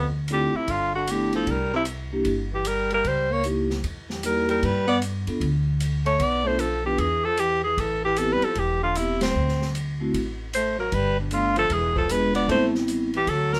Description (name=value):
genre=jazz, small-group swing and bop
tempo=153 BPM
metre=4/4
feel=swing 65% on 8ths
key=G mixolydian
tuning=A4 = 437 Hz
part: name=clear alto saxophone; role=melody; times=0.0-13.6 s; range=C4 to D5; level=-26 LUFS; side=equal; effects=none
part: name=mellow baritone saxophone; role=second line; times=0.0-13.6 s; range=F2 to B3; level=-33 LUFS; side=equal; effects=none
part: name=upright bass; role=bass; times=0.0-13.6 s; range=E1 to G2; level=-31 LUFS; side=equal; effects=none
part: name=vibraphone with soft mallets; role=accompaniment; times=0.3-13.1 s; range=G3 to B4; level=-29 LUFS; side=equal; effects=none
part: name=open jazz drum kit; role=drums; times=0.3-13.6 s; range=hi-hat, kick drum, ride cymbal, snare drum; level=-37 LUFS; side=equal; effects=none
room=moderate club reverb, RT60 0.6 s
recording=none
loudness=-24 LUFS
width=mono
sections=0.0-13.6 A section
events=band accent 9.1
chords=0.0 Dm7; 0.7 G; 1.5 C7(no3); 3.0 C#dim7; 4.6 G7; 6.2 Bm7b5; 7.0 Eadd11; 7.8 Am7; 9.3 D7(no3); 10.9 G7; 11.7 E7b9; 12.5 Am7